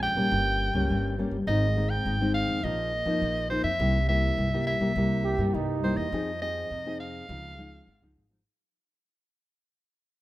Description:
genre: samba.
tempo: 103 BPM.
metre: 4/4.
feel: straight.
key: F minor.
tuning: A4 = 440 Hz.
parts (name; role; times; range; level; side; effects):
bright soprano saxophone; melody; 0.0-8.1 s; C5 to G5; -30 LUFS; equal; none.
nylon-string guitar; accompaniment; 0.0-8.4 s; F2 to Ab4; -29 LUFS; left 2 dB; none.
upright bass; bass; 0.0-8.4 s; G1 to G2; -30 LUFS; right 1 dB; none.
warm trombone; second line; 5.2-6.1 s; Eb4 to G4; -32 LUFS; right 4 dB; none.
room: light reverb, studio reverb.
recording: rough home demo mix.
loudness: -24 LUFS.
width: side -16 dB against mid.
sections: 0.0-6.1 A section; 6.1-8.5 B section.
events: fade-out 6.1-8.5.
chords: 0.3 Gdim; 1.5 Ab; 2.6 Bbsus4; 3.8 C7; 6.1 Fm7; 7.3 Dbadd9.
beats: 0.31 0.90 | 1.48 2.06 2.64 3.22 | 3.80 4.38 4.96 5.54 | 6.13 6.71 7.29 7.87.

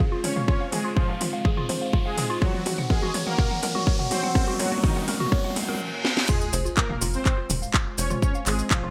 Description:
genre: melodic techno.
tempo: 124 BPM.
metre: 4/4.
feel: straight.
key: F phrygian.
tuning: A4 = 442 Hz.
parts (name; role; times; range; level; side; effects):
deep dark ambient pad; sustained chords; 0.1-8.9 s; Ab3 to Db5; -38 LUFS; equal; chorus, built-in reverb, sidechain pumping.
woody wave-folded pluck; arpeggios; 0.0-8.9 s; F4 to Gb5; -34 LUFS; equal; chorus, cassette tape, sidechain pumping, digital delay.
electronic kick drum; drums; 0.0-8.8 s; none; -26 LUFS; equal; none.
house drum kit; drums; 0.0-8.8 s; crash cymbal, handclaps, hi-hat, snare drum, toms; -31 LUFS; equal; none.
riser, reverse cymbal and sub drop; sound effects; 0.0-8.2 s; none; -35 LUFS; equal; none.
soft supersaw; melody; 0.2-8.9 s; Eb3 to Db5; -34 LUFS; equal; sidechain pumping, delay.
tight sequencer bass; bass; 0.2-8.9 s; Eb1 to Db2; -34 LUFS; equal; sidechain pumping, high-pass filter.
cabasa; percussion; 6.3-8.8 s; none; -35 LUFS; equal; none.
room: moderate plate reverb, RT60 1.3 s.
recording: bright 1980s-style digital production.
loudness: -24 LUFS.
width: mono.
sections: 0.0-6.3 A section; 6.3-8.9 B section.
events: build-up 0.0-6.3; drum fill 0.0-5.8, 6.0; riser 0.0-5.8; reverse cymbal 5.3-6.3; drop 6.3-8.9; impact 6.3-8.2.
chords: 0.0 Fm; 2.4 Gb; 6.3 Fm.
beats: 0.00 | 0.48 0.97 1.45 1.93 | 2.42 2.90 3.38 3.87 | 4.35 4.84 5.32 5.80 | 6.29 6.77 7.26 7.74 | 8.22 8.71.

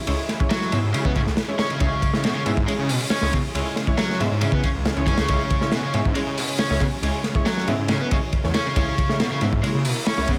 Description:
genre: breakbeat, breaks.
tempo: 138 BPM.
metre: 4/4.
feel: straight.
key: unclear.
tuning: A4 = 438 Hz.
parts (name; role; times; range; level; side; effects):
lush unison pad; sustained chords; 0.0-10.4 s; Db3 to Fb4; -33 LUFS; equal; chorus, phaser, sidechain pumping.
orchestra-hit-like synth stab; stabs; 0.1-10.3 s; Ab3 to Fb5; -32 LUFS; equal; built-in reverb, tape echo.
detuned saw bass; bass; 0.1-10.4 s; Cb2 to Db3; -27 LUFS; equal; none.
crunchy breakbeat drum kit; drums; 0.1-10.4 s; hi-hat, kick drum, ride cymbal, snare drum; -26 LUFS; equal; none.
overdriven electric guitar; riff; 0.5-10.3 s; Cb3 to Db4; -28 LUFS; equal; tape echo.
room: light reverb, small room ambience.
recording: none.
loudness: -22 LUFS.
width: mono.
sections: 0.0-10.4 A section.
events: none.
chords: 0.0 Dbm.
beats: | 0.07 0.50 0.94 1.37 | 1.81 2.24 2.68 3.11 | 3.55 3.98 4.42 4.85 | 5.29 5.72 6.16 6.59 | 7.03 7.46 7.89 8.33 | 8.76 9.20 9.63 10.07.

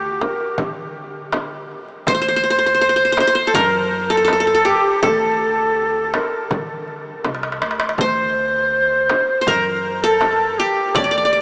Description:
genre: Arabic maqam ensemble.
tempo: 81 BPM.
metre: 4/4.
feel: straight.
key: D maqam hijaz.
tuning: A4 = 443 Hz.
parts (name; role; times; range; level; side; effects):
qanun; melody; 0.0-11.4 s; G4 to D5; -22 LUFS; equal; tape echo.
bright reedy ney; second line; 0.0-11.4 s; G4 to D5; -21 LUFS; equal; none.
upright bass; bass; 0.0-11.4 s; C2 to D3; -35 LUFS; equal; none.
darbuka; percussion; 0.0-11.4 s; none; -30 LUFS; equal; none.
frame drum; percussion; 0.2-11.1 s; none; -30 LUFS; equal; none.
room: wet huge ambient reverb, RT60 6.7 s.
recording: dreamy mix soaked in reverb, small speaker sound.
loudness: -18 LUFS.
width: mono.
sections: 0.0-11.4 A section.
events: drum fill 7.3-8.0.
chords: none.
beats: 0.59 1.33 | 2.07 2.81 3.55 4.29 | 5.03 5.77 6.51 7.25 | 7.99 8.73 9.47 10.21 | 10.95.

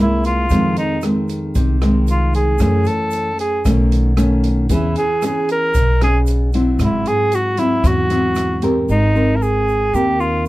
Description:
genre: bossa nova.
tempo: 114 BPM.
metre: 4/4.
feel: straight.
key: unclear.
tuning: A4 = 440 Hz.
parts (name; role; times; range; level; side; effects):
mellow cor anglais; melody; 0.0-10.5 s; Eb4 to Bb4; -18 LUFS; right 1 dB; none.
nylon-string guitar; accompaniment; 0.0-10.5 s; F2 to Bb4; -19 LUFS; equal; none.
upright bass; bass; 0.0-10.5 s; Ab1 to Gb2; -17 LUFS; equal; none.
open jazz drum kit; drums; 0.2-8.7 s; hi-hat, kick drum, rim click; -24 LUFS; equal; none.
egg shaker; percussion; 0.2-10.5 s; none; -42 LUFS; right 7 dB; none.
room: light reverb.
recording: dark, warm production.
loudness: -14 LUFS.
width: side -17 dB against mid.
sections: 0.0-8.9 A section; 8.9-10.5 B section.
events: cor anglais solo 0.0-8.9.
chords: 0.0 C7b13; 0.5 Fm7; 2.6 Gbm7; 3.6 Cb9; 4.7 E6; 6.8 Abaug7; 8.9 Abmaj9.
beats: | 0.50 1.02 1.55 2.08 | 2.60 3.13 3.65 4.17 | 4.70 5.22 5.75 6.27 | 6.79 7.32 7.84 8.37 | 8.89 9.41 9.94 10.46.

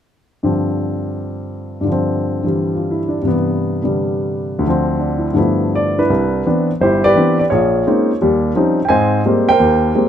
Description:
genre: solo jazz.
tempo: 171 BPM.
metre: 4/4.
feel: swing 65% on 8ths, rubato.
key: C major.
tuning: A4 = 441 Hz.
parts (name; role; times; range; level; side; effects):
warm grand piano; solo; 0.4-10.1 s; G1 to Ab5; -14 LUFS; equal; none.
room: light reverb.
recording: none.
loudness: -14 LUFS.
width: side -9 dB against mid.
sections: 0.4-6.1 A section; 6.1-10.1 B section.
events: none.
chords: 0.4 G7sus4; 3.3 Cmaj7/G; 4.6 Dm7; 5.4 G13; 6.1 Cmaj9; 7.5 Bbm11; 8.2 Eb13; 8.9 Abmaj9.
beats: | 0.43 0.79 1.15 1.51 | 1.86 2.21 2.56 2.91 | 3.25 3.60 3.95 4.29 | 4.64 4.99 5.35 5.73 | 6.10 6.46 6.82 7.17 | 7.52 7.87 8.21 8.55 | 8.90 9.25 9.60 9.95.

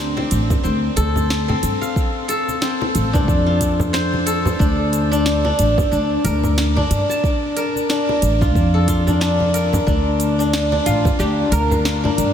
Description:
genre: organic downtempo.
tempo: 91 BPM.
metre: 4/4.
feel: swing 58% on 16ths.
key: unclear.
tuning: A4 = 438 Hz.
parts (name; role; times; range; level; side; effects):
steel-string zither; arpeggios; 0.0-12.3 s; C4 to A5; -19 LUFS; left 1 dB; vintage 12-bit sampler grit, diffuse ambient delay, shimmer reverb.
upright bass; bass; 0.0-12.3 s; A1 to G2; -19 LUFS; equal; sidechain pumping.
congas; percussion; 0.2-12.2 s; none; -27 LUFS; equal; none.
afro-pop drum kit; drums; 0.3-12.3 s; cabasa, hi-hat, snare drum; -27 LUFS; right 1 dB; small room reverb.
electronic kick drum; drums; 0.5-11.2 s; none; -20 LUFS; right 1 dB; small room reverb.
oud; melody; 10.9-12.3 s; F4 to Bb4; -24 LUFS; right 2 dB; tape echo, shimmer reverb.
room: moderate huge ambient reverb, RT60 8.4 s.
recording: dreamy mix soaked in reverb.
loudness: -16 LUFS.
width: side -9 dB against mid.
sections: 0.0-12.3 A section.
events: none.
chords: 0.0 Dm7; 4.6 Bbmaj7.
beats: 0.64 1.30 | 1.96 2.62 3.28 3.94 | 4.60 5.26 5.92 6.58 | 7.24 7.90 8.55 9.21 | 9.87 10.53 11.19 11.85.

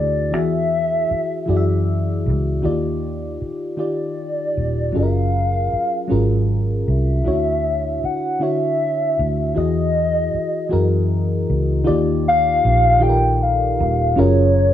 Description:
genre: slow six-eight R&B.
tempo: 52 BPM (dotted quarters).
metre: 6/8.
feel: straight.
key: unclear.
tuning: A4 = 440 Hz.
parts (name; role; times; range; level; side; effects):
hollow clarinet-like synth lead; melody; 0.0-14.7 s; Db5 to G5; -20 LUFS; left 1 dB; chorus, slapback echo.
mellow FM electric piano; accompaniment; 0.0-14.7 s; D3 to E5; -22 LUFS; left 1 dB; chorus.
vintage muted fingered electric bass; bass; 0.0-14.7 s; Eb1 to F#2; -20 LUFS; equal; none.
room: light reverb, digital ambience.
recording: none.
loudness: -16 LUFS.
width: side -11 dB against mid.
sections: 0.0-11.9 A section; 11.9-14.7 B section.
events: none.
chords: 0.3 Eadd9; 2.6 Ebmaj9; 4.9 Gbmaj9; 7.2 Dmaj9; 9.6 Emaj9; 11.9 Ebmaj9; 14.2 Gbmaj9.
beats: | 0.32 1.48 | 2.63 3.78 | 4.94 6.09 | 7.25 8.40 | 9.55 10.71 | 11.86 13.02 | 14.17.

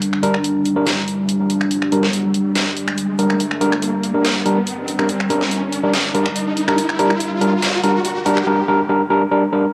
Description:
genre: deep dubstep.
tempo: 142 BPM.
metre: 4/4.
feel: half-time.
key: G minor.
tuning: A4 = 440 Hz.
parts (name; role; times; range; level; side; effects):
deep dark ambient pad; sustained chords; 0.0-8.5 s; G3 to D4; -24 LUFS; equal; chorus, built-in reverb, cassette tape.
dubstep drum kit; drums; 0.0-8.4 s; finger snaps, hi-hat, snare drum; -25 LUFS; equal; overdrive, high-pass filter on hats, high-pass filter on snare, high-pass filter on toms.
riser; sound effects; 0.0-8.5 s; none; -28 LUFS; equal; none.
overdriven tine electric piano; stabs; 0.2-9.6 s; G3 to Bb4; -20 LUFS; equal; low-pass filter, cassette tape, dub echo.
deep soft wobble bass; bass; 1.1-8.5 s; F1 to Bb1; -38 LUFS; equal; none.
room: wet spring reverb, RT60 2.0 s.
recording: home recording on cassette.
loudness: -18 LUFS.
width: mono.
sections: 0.0-9.7 A section.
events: build-up 0.0-9.7; riser 0.0-8.5.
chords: 0.0 Gm.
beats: | 0.02 0.44 0.87 1.29 | 1.71 2.13 2.56 2.98 | 3.40 3.82 4.25 4.67 | 5.09 5.51 5.94 6.36 | 6.78 7.20 7.63 8.05 | 8.47 8.89 9.32.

